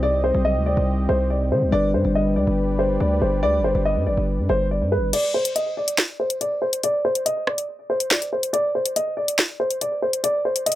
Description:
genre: hip hop, drill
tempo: 141 BPM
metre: 4/4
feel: half-time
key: unclear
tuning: A4 = 440 Hz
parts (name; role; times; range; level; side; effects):
- dark grand piano; melody; 0.0-10.8 s; B4 to Eb5; -22 LUFS; equal; low-pass filter, digital delay
- mellow tine electric piano; accompaniment; 0.0-5.2 s; G3 to C5; -26 LUFS; left 3 dB; none
- sweeping resonant pad; sustained chords; 0.0-5.1 s; C3 to Eb5; -29 LUFS; right 1 dB; chorus
- distorted 808-style bass; bass; 0.0-5.1 s; G1 to Eb3; -23 LUFS; right 1 dB; distortion
- drill drum kit; drums; 5.1-10.8 s; crash cymbal, hi-hat, rim click, snare drum; -22 LUFS; left 1 dB; none
room: light reverb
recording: none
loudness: -19 LUFS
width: side -14 dB against mid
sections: 0.0-5.1 A section; 5.1-10.8 B section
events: break 5.1-10.8; filter sweep on grand piano 5.1-10.8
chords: 0.0 Cm; 1.7 G; 5.1 N.C.

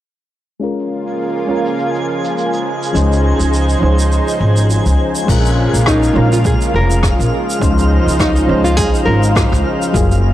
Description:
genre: sunset chillout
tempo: 103 BPM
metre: 4/4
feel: swing 55% on 16ths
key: Bb minor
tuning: A4 = 440 Hz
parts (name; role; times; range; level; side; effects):
- soft electric-piano-like synth keys; accompaniment; 0.6-10.3 s; F3 to C5; -20 LUFS; moving between left 5 dB and right 4 dB; chorus, auto-pan, low-pass filter, analog delay
- lush unison pad; sustained chords; 0.8-10.3 s; Db3 to C5; -20 LUFS; right 1 dB; chorus
- jazz brush drum kit; drums; 0.6-10.2 s; crash cymbal, rim click, shaker; -23 LUFS; equal; low-pass filter on cymbals, low-pass filter on snare, low-pass filter on perc, low-pass filter on room
- twinkling granular texture; texture; 1.2-10.3 s; F4 to Ab5; -24 LUFS; left 1 dB; built-in reverb
- upright bass; bass; 2.9-10.3 s; F1 to Db2; -14 LUFS; equal; tube saturation
- electronic kick drum; drums; 5.3-10.1 s; none; -18 LUFS; equal; overdrive
- nylon-string guitar; melody; 5.9-9.6 s; Eb4 to Bb4; -19 LUFS; left 1 dB; tape echo
room: small room reverb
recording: dry, gritty hardware recording, transformer saturation, cassette tape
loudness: -12 LUFS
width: side -13 dB against mid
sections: 0.6-5.3 A section; 5.3-10.3 B section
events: filter sweep on synth keys 0.6-5.3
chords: 0.6 Bbm7; 2.7 Dbmaj9; 5.3 Bbm7; 7.3 Dbmaj9

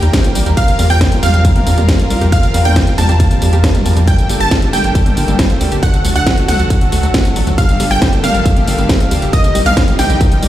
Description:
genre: uplifting trance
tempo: 137 BPM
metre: 4/4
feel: straight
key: G minor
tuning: A4 = 440 Hz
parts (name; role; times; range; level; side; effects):
- supersaw stab; melody; 0.0-10.5 s; Eb5 to A5; -19 LUFS; right 2 dB; sidechain pumping, ping-pong delay
- wide unison pluck; second line; 0.0-10.5 s; Eb6 to A6; -26 LUFS; right 1 dB; sidechain pumping, ping-pong delay
- lush unison pad; sustained chords; 0.0-10.5 s; C3 to Bb4; -21 LUFS; left 1 dB; chorus, sidechain pumping
- analog pluck; arpeggios; 0.0-10.5 s; G2 to G4; -23 LUFS; equal; chorus, phaser, sidechain pumping, ping-pong delay
- tight sequencer bass; bass; 0.0-10.5 s; G1 to F2; -14 LUFS; equal; sidechain pumping
- techno drum kit; drums; 0.0-10.5 s; hi-hat, ride cymbal, snare drum, tambourine, toms; -19 LUFS; equal; studio reverb
- electronic kick drum; drums; 0.1-10.3 s; none; -13 LUFS; equal; distortion, studio reverb
- swell; sound effects; 3.3-4.1 s; none; -28 LUFS; right 2 dB; none
room: digital ambience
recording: played on a big sound system in a bare room, large studio reverb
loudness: -10 LUFS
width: side -13 dB against mid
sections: 0.0-10.5 A section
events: swell 3.3-4.1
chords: 0.0 Eb; 0.6 Fsus4; 4.1 Gmadd9; 5.8 D; 7.6 Gmadd9; 9.3 Cm

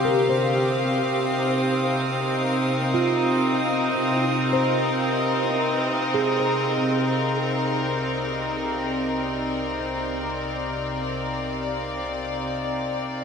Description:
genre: ambient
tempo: free time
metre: none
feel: none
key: C minor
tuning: A4 = 439 Hz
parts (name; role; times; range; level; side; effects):
- clear symphonic string section; sustained chords; 0.0-13.2 s; C3 to F5; -22 LUFS; left 1 dB; none
- handpan; arpeggios; 0.0-7.5 s; F4 to C5; -28 LUFS; right 1 dB; diffuse ambient delay
- drifting glass-harmonics texture; texture; 0.0-13.2 s; F5 to Eb6; -33 LUFS; right 3 dB; chorus, built-in reverb
- warm sub bass; bass; 7.0-13.2 s; C2; -42 LUFS; equal; none
room: wet huge ambient reverb, RT60 8.5 s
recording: in a vast, echoing space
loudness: -21 LUFS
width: side -6 dB against mid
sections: 0.0-7.0 A section; 7.0-13.2 B section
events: fade-in on synth texture 0.0-7.0; fade-in on sub bass 7.0-13.2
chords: 0.0 Ebmaj7/C; 0.6 Ab69/C; 7.0 Cm7

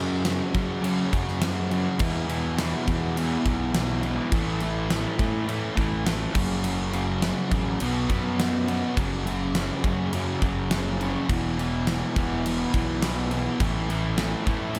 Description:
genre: quiet-loud alternative rock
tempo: 103 BPM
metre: 4/4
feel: straight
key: F# minor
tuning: A4 = 437 Hz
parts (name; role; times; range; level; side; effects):
- distorted electric guitar; riff; 0.0-14.8 s; E2 to B3; -32 LUFS; equal; distortion
- sludgy distorted guitar; riff; 0.0-14.8 s; E2 to B3; -33 LUFS; equal; overdrive
- fuzz fingered electric bass; bass; 0.0-14.8 s; E1 to F#3; -32 LUFS; equal; overdrive
- huge arena drum kit; drums; 0.2-14.8 s; crash cymbal, kick drum, snare drum; -30 LUFS; equal; none
room: light reverb, small room reverb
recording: none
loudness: -26 LUFS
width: mono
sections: 0.0-14.8 A section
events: none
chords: 0.0 F#5; 2.0 E5; 4.3 A5; 6.4 F#m; 7.8 B5; 9.0 F#5; 11.3 E5; 13.6 A5

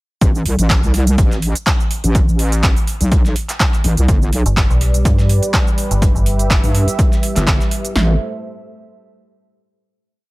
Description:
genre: bass house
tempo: 124 BPM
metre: 4/4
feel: swing 55% on 16ths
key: A minor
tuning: A4 = 439 Hz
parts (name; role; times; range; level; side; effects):
- wobble bass; bass; 0.2-8.2 s; G1 to G2; -15 LUFS; equal; chorus, overdrive, sidechain pumping
- big-room dance drum kit; drums; 0.2-8.1 s; kick drum, snare drum; -15 LUFS; equal; overdrive
- big-room dance drum kit; drums; 0.2-7.9 s; cabasa, handclaps, hi-hat; -22 LUFS; right 1 dB; overdrive
- dusty soul sampler-style drum kit; drums; 0.2-7.8 s; hi-hat, snare drum; -30 LUFS; right 1 dB; high-pass filter on hats, high-pass filter on snare, high-pass filter on room
- dark analog pad; sustained chords; 4.1-8.2 s; G3 to E5; -24 LUFS; right 1 dB; chorus, sidechain pumping
- metallic FM bass; bass; 4.5-6.6 s; G1 to G2; -15 LUFS; equal; sidechain pumping
room: digital ambience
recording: none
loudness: -13 LUFS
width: side -21 dB against mid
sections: 0.2-8.0 drop; 8.0-9.9 final chord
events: drop 0.2-8.0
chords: 0.2 Am; 4.1 G; 8.0 Am

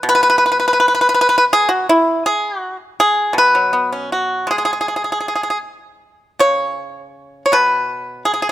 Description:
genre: chinese traditional, Chinese solo plucked strings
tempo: 80 BPM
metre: 4/4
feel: rubato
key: unclear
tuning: A4 = 440 Hz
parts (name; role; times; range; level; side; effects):
- pipa; solo; 0.0-8.5 s; B2 to C#5; -13 LUFS; equal; none
room: light reverb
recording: close, detailed microphones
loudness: -13 LUFS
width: side -13 dB against mid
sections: 0.0-8.5 A section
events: none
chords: none

